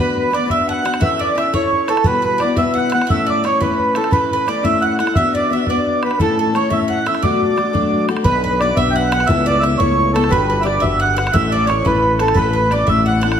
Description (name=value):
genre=celtic folk, Celtic jig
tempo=116 BPM (dotted quarters)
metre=6/8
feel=straight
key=unclear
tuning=A4 = 440 Hz
part: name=mellow accordion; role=melody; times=0.0-13.4 s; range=A4 to G5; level=-18 LUFS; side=right 3 dB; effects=none
part: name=bowl-back mandolin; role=second line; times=0.0-13.4 s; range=A4 to F#5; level=-26 LUFS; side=right 6 dB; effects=none
part: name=bright wooden flute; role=second line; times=0.0-13.4 s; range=A4 to A5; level=-25 LUFS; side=left 8 dB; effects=none
part: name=picked steel-string acoustic guitar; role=accompaniment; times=0.0-13.4 s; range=A2 to B4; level=-20 LUFS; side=left 4 dB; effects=none
part: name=bodhran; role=percussion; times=0.2-13.4 s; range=none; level=-23 LUFS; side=equal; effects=none
part: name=fretless electric bass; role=bass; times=8.3-13.4 s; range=G1 to C#2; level=-20 LUFS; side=equal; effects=none
room=wet recital hall reverb, RT60 1.4 s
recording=none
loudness=-14 LUFS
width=side -8 dB against mid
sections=0.0-8.3 A section; 8.3-13.4 A section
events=none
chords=0.0 Bm; 1.0 Aadd9/C#; 2.0 Emadd9/B; 3.1 A; 5.2 Bm; 6.2 A; 7.2 Bm7; 8.3 Bm; 9.3 Aadd9/C#; 10.3 Gmaj7; 11.3 A